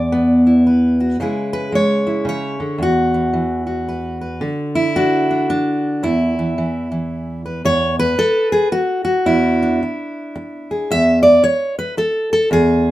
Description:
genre	folk, solo fingerstyle acoustic guitar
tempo	111 BPM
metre	3/4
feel	swing 63% on 8ths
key	E mixolydian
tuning	A4 = 440 Hz
part	fingerpicked steel-string acoustic guitar	solo	0.0-12.9 s	E2 to E5	-15 LUFS	equal	none
room	moderate studio reverb, RT60 0.6 s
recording	minimal, uncompressed stereo recording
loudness	-14 LUFS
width	side -15 dB against mid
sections	0.0-7.7 A section; 7.7-12.9 B section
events	none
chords	0.0 Esus2; 1.2 C#m7; 2.8 Esus2; 4.4 N.C.; 6.0 E5; 7.7 E7(no3); 10.9 N.C.

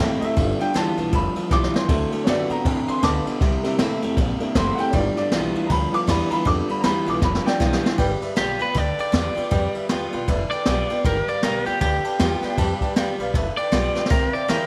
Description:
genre	rockabilly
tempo	157 BPM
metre	4/4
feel	swing 61% on 8ths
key	G mixolydian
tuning	A4 = 440 Hz
part	picked steel-string acoustic guitar	accompaniment	0.0-14.7 s	G2 to F#4	-32 LUFS	equal	none
part	electric guitar through a small old amp	riff	0.0-8.0 s	G2 to C4	-27 LUFS	equal	none
part	upright bass	bass	0.0-14.7 s	F1 to A2	-29 LUFS	equal	none
part	clear upright piano	accompaniment	0.2-14.6 s	F#3 to D6	-29 LUFS	equal	none
part	jazz brush drum kit	drums	0.2-14.6 s	crash cymbal, kick drum, ride cymbal, snare drum	-26 LUFS	equal	none
part	electric guitar at the edge of break-up	melody	8.4-14.7 s	G4 to D5	-26 LUFS	equal	tape echo
room	light reverb, small room ambience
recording	none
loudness	-22 LUFS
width	mono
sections	0.0-8.0 A section; 8.0-14.7 B section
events	upright piano solo 0.0-8.0; drum fill 1.5-1.9, 7.2-8.0, 13.9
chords	0.4 G7; 1.9 D7; 3.4 C7; 4.9 G7; 14.1 C7

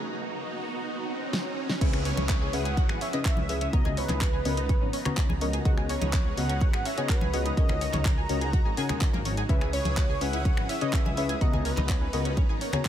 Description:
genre	progressive house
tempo	125 BPM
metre	4/4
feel	straight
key	C# dorian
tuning	A4 = 440 Hz
part	filtered supersaw swell	sustained chords	0.0-12.9 s	B3 to D#6	-37 LUFS	right 1 dB	phaser, sidechain pumping
part	riser, swell and downlifter	sound effects	0.0-5.7 s	none	-37 LUFS	right 2 dB	none
part	pop drum kit	drums	1.3-12.9 s	crash cymbal, finger snaps, handclaps, hi-hat, snare drum	-35 LUFS	equal	studio reverb, sidechain pumping on hats, sidechain pumping on cymbals
part	analog pluck	arpeggios	1.8-12.9 s	C#3 to G#5	-36 LUFS	equal	wide subtle chorus, sidechain pumping, digital delay
part	deep mellow chord stab	stabs	1.8-12.9 s	C#3 to A#5	-34 LUFS	left 3 dB	analog chorus, sidechain pumping, digital delay
part	dark detuned saw bass	bass	1.8-12.6 s	G#1 to C#2	-31 LUFS	equal	sidechain pumping, high-pass filter
part	electronic kick drum	drums	1.8-12.9 s	none	-25 LUFS	equal	high-pass filter on kick, studio reverb
part	wide unison lead	melody	2.1-12.9 s	B4 to A#5	-34 LUFS	right 1 dB	lush chorus, sidechain pumping, digital delay
part	congas	percussion	2.2-12.8 s	none	-36 LUFS	left 2 dB	sidechain pumping on perc
room	digital ambience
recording	none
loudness	-24 LUFS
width	side -10 dB against mid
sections	0.0-1.8 A section; 1.8-12.9 B section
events	break 0.0-1.8; build-up 0.0-1.8; riser 0.0-1.8; swell 0.9-1.8; drum fill 1.3-1.8; drop 1.8-12.9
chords	0.0 F#6; 1.8 C#m7; 3.7 Bmaj7; 7.6 F#6/C#; 9.5 C#m7; 11.4 Bmaj7/C#

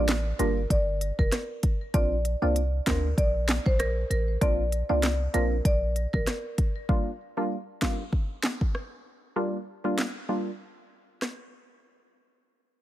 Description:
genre	dancehall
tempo	97 BPM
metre	4/4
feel	swing 56% on 16ths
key	G minor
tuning	A4 = 441 Hz
part	marimba with medium mallets	melody	0.0-6.2 s	Bb4 to D5	-30 LUFS	equal	ping-pong delay
part	wavetable chord stab	accompaniment	0.0-10.5 s	G3 to F4	-30 LUFS	right 1 dB	sidechain pumping
part	warm 808-style bass	bass	0.0-6.3 s	F1 to D2	-27 LUFS	equal	none
part	afro-pop drum kit	drums	0.1-11.4 s	handclaps, hi-hat, kick drum, rim click, snare drum	-27 LUFS	equal	none
room	digital ambience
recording	none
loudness	-25 LUFS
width	side -14 dB against mid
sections	0.0-6.9 A section; 6.9-11.8 B section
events	none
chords	0.0 Gm7; 1.9 Bbadd9; 6.9 Gm7

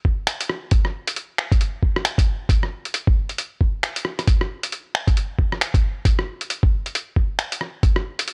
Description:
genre	future garage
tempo	135 BPM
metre	4/4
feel	swing 60% on 16ths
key	none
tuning	none
part	electronic kick drum	drums	0.0-7.9 s	none	-20 LUFS	equal	studio reverb
part	lo-fi sampler-style drum kit	drums	0.3-8.3 s	finger snaps, hi-hat, rim click	-26 LUFS	equal	studio reverb
room	little or no reverb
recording	dry, gritty hardware recording, cassette tape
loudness	-22 LUFS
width	mono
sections	0.0-8.3 A section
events	none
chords	none

